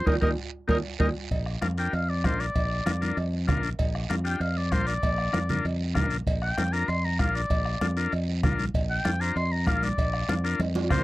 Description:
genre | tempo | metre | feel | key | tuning
latin, cumbia | 194 BPM | 4/4 | straight | Bb major | A4 = 440 Hz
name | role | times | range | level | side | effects
warm oboe | melody | 0.0-11.0 s | C5 to C6 | -30 LUFS | left 1 dB | none
breathy clarinet | second line | 0.0-1.1 s | Bb4 | -28 LUFS | right 3 dB | none
combo organ | accompaniment | 0.1-11.0 s | Bb3 to C5 | -30 LUFS | left 4 dB | none
fingered electric bass | bass | 0.1-11.0 s | Bb1 to F2 | -28 LUFS | equal | none
bombo | percussion | 0.1-11.0 s | none | -29 LUFS | equal | none
congas | percussion | 0.1-11.0 s | none | -32 LUFS | right 1 dB | none
guiro | percussion | 0.1-11.0 s | none | -42 LUFS | right 8 dB | none
timbales and cowbell | percussion | 0.1-11.0 s | none | -35 LUFS | right 4 dB | none
room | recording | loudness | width
little or no reverb | dry, close 1970s-style studio recording | -24 LUFS | side -18 dB against mid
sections
0.0-1.3 A section; 1.3-11.0 B section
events
band accent 0.1-1.3; oboe solo 1.3-11.0; drum fill 10.6-11.0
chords
0.1 Eb; 1.3 Bb

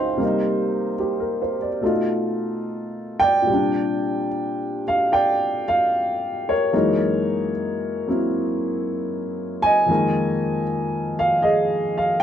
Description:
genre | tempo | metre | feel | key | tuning
solo jazz | 74 BPM | 4/4 | swing 68% on 8ths, uneven beats, rubato | unclear | A4 = 440 Hz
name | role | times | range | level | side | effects
warm upright piano | solo | 0.0-12.2 s | Db2 to Ab5 | -19 LUFS | equal | none
room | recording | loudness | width
light reverb | none | -19 LUFS | side -9 dB against mid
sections
0.0-12.2 A section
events
none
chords
0.2 Cm7; 1.8 B7#11; 3.5 Bb69; 6.7 Gb13; 9.9 Fm11

